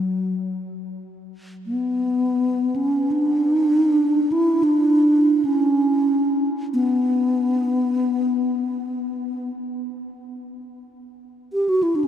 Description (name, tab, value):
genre	world meditative, free-time meditation music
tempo	free time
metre	none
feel	none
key	B minor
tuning	A4 = 444 Hz
part	mellow hollow bass flute	solo	0.0-12.1 s	F#3 to G4	-19 LUFS	equal	analog delay
room	wet huge ambient reverb, RT60 8.3 s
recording	dreamy mix soaked in reverb, cassette tape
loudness	-18 LUFS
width	side -9 dB against mid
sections	0.0-12.1 A section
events	none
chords	none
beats	free time